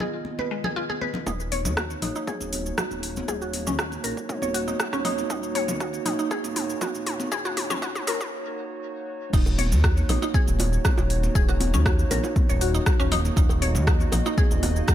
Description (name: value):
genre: afro house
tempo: 119 BPM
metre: 4/4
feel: straight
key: Eb minor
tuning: A4 = 437 Hz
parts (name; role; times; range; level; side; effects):
- dark analog pad; sustained chords; 0.0-14.9 s; Eb3 to Eb5; -31 LUFS; right 3 dB; lush chorus, sidechain pumping
- mallet-like synth pluck; arpeggios; 0.0-14.9 s; Ab3 to Db5; -30 LUFS; left 1 dB; lush chorus, sidechain pumping, ping-pong delay
- deep house drum kit; drums; 0.0-14.9 s; cabasa, crash cymbal, hi-hat, rim click, toms; -30 LUFS; equal; overdrive, high-pass filter on perc, low-pass filter on perc, high-pass filter on hats, low-pass filter on hats, high-pass filter on toms, low-pass filter on toms, high-pass filter on snare, low-pass filter on snare, high-pass filter on cymbals, low-pass filter on cymbals
- congas; percussion; 0.0-14.9 s; none; -34 LUFS; left 2 dB; none
- smooth synth bass; bass; 1.3-14.8 s; Eb1 to Eb2; -26 LUFS; equal; sidechain pumping
- electronic kick drum; drums; 1.3-14.9 s; none; -23 LUFS; equal; overdrive, high-pass filter on kick
- bongos; percussion; 9.3-14.7 s; none; -34 LUFS; right 4 dB; none
room: light reverb, digital ambience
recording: high-pass filter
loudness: -22 LUFS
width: side -12 dB against mid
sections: 0.0-1.3 A section; 1.3-9.3 B section; 9.3-14.9 C section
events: filter sweep on synth pluck 0.0-1.3; build-up 1.3-9.3; drum fill 1.3-8.3; break 8.3-9.3; drop 9.3-14.9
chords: 0.0 Db7/Eb (rootless); 1.3 Ebm7